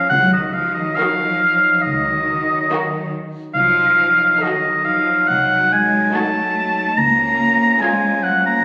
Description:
classical, slow romantic movement for symphony orchestra; 70 BPM; 4/4; rubato; A4 = 440 Hz
clear oboe; second line; 0.0-8.6 s; Eb5 to Bb5; -18 LUFS; equal
dark French horn section; sustained chords; 0.0-8.6 s; F3 to Eb4; -29 LUFS; equal
dark studio cello section; bass; 0.0-8.6 s; Eb3 to Bb3; -26 LUFS; equal
dark studio double bass section; bass; 0.1-7.6 s; C2 to Db2; -32 LUFS; equal
timpani; percussion; 0.1-1.4 s; Db3; -32 LUFS; equal
warm studio violin section; melody; 1.0-8.4 s; Ab4 to Bb4; -33 LUFS; equal
rich studio violin section; second line; 1.0-8.4 s; F4 to Gb4; -31 LUFS; equal
rich studio viola section; accompaniment; 1.0-8.4 s; Db4 to Eb4; -35 LUFS; equal
wet scoring stage reverb, RT60 1.7 s; recorded on a phone in the room, club reverb; -17 LUFS; mono
0.0-8.6 A section
0.1 Ebm7/Db; 3.5 Cdim7; 7.0 Db

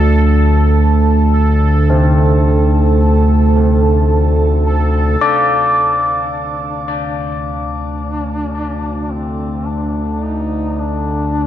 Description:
dark ambient drone; free time; A4 = 440 Hz
old church bells; arpeggios; 0.0-11.5 s; D3 to D5; -19 LUFS; left 2 dB; shimmer reverb, analog delay
analog drone; drone; 0.0-11.5 s; D2 to D3; -14 LUFS; equal; chorus
bubbling stepped-filter texture; texture; 0.0-5.3 s; A4; -20 LUFS; right 3 dB; chorus, built-in reverb, shimmer reverb
mellow duduk; melody; 5.2-11.5 s; C4 to Eb4; -24 LUFS; left 2 dB; analog delay
wet lush hall reverb, RT60 2.6 s; dreamy mix soaked in reverb, cassette tape; -12 LUFS; side -11 dB against mid
0.0-5.2 A section; 5.2-11.5 B section
fade-in on synth drone 5.2-11.5; fade-in on duduk 5.2-11.5
0.0 D5

